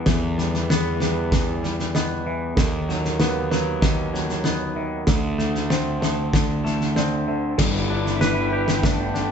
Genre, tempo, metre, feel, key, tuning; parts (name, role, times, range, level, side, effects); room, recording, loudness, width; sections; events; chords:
post-rock; 96 BPM; 4/4; straight; A4 = 441 Hz
felt-muted upright piano; arpeggios; 0.0-9.1 s; A4 to E5; -31 LUFS; right 9 dB
twangy electric guitar; arpeggios; 0.0-9.3 s; D3 to B4; -27 LUFS; left 2 dB
fuzz picked electric bass; bass; 0.0-9.3 s; G1 to E2; -25 LUFS; right 1 dB; overdrive
loose indie drum kit; drums; 0.1-9.2 s; crash cymbal, kick drum, snare drum; -23 LUFS; equal
muted cello; melody; 7.6-9.3 s; C4 to E4; -28 LUFS; left 5 dB
glassy FM pad; sustained chords; 8.3-9.3 s; A4 to B5; -34 LUFS; right 2 dB; ensemble chorus, built-in reverb
moderate large studio reverb, RT60 1.2 s; band playing live in one room, nothing above 7.9 kHz; -20 LUFS; side -7 dB against mid
0.0-7.6 A section; 7.6-9.3 B section
0.0 Em; 2.6 B/D#; 5.1 D5; 7.6 Gadd9